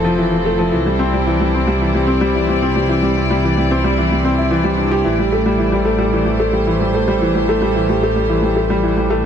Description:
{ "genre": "piano and strings electronica", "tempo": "111 BPM", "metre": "4/4", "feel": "straight", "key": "unclear", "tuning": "A4 = 440 Hz", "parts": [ { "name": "rich studio string section", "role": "sustained chords", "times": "0.0-9.3 s", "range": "C3 to D5", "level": "-20 LUFS", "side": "equal", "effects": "none" }, { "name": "felt-muted upright piano", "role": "riff", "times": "0.0-9.3 s", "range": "E3 to G4", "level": "-16 LUFS", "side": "left 1 dB", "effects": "digital delay" }, { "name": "dark detuned saw bass", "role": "bass", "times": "0.0-9.3 s", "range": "F1 to C2", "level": "-21 LUFS", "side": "right 1 dB", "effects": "none" } ], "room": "moderate lush hall reverb, RT60 2.2 s", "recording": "none", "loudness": "-14 LUFS", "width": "side -8 dB against mid", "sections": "0.0-9.3 A section", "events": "none", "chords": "0.0 Fmaj7; 0.7 Cadd9; 5.1 Am7" }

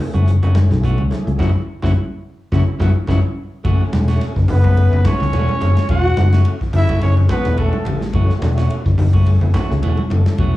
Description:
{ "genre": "afrobeat", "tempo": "107 BPM", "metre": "4/4", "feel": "swing 56% on 16ths", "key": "F# dorian", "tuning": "A4 = 440 Hz", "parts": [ { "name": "tonewheel organ", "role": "accompaniment", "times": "0.0-10.4 s", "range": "A3 to A4", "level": "-30 LUFS", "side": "left 2 dB", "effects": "slow rotary speaker, overdrive, chorus vibrato, slapback echo" }, { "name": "clean electric guitar", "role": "arpeggios", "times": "0.0-10.5 s", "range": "C#3 to F#3", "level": "-27 LUFS", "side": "left 6 dB", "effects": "slapback echo" }, { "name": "clean electric guitar", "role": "stabs", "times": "0.1-10.6 s", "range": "E3 to F#4", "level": "-28 LUFS", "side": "right 6 dB", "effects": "slapback echo" }, { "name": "fingered electric bass", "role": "bass", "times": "0.1-10.6 s", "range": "E1 to C#2", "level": "-14 LUFS", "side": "left 1 dB", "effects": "none" }, { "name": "warm soul drum kit", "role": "drums", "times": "0.1-10.6 s", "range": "hi-hat, kick drum, ride cymbal, snare drum", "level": "-23 LUFS", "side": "equal", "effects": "none" }, { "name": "congas", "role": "percussion", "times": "0.1-10.3 s", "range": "none", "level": "-26 LUFS", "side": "right 2 dB", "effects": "none" }, { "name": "warm trombone", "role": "melody", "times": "4.5-8.0 s", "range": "A3 to F#4", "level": "-22 LUFS", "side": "left 1 dB", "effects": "slapback echo" }, { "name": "growling trumpet", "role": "second line", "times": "4.5-8.0 s", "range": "A4 to F#5", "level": "-26 LUFS", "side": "right 2 dB", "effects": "slapback echo" } ], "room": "small room ambience", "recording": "live gig heard through the venue's PA, club reverb", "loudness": "-14 LUFS", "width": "side -16 dB against mid", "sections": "0.0-3.6 A section; 3.6-10.6 B section", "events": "band accent 1.4-3.6; tonewheel organ fill 2.0-3.6", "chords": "0.0 F#m7; 3.6 F#m9" }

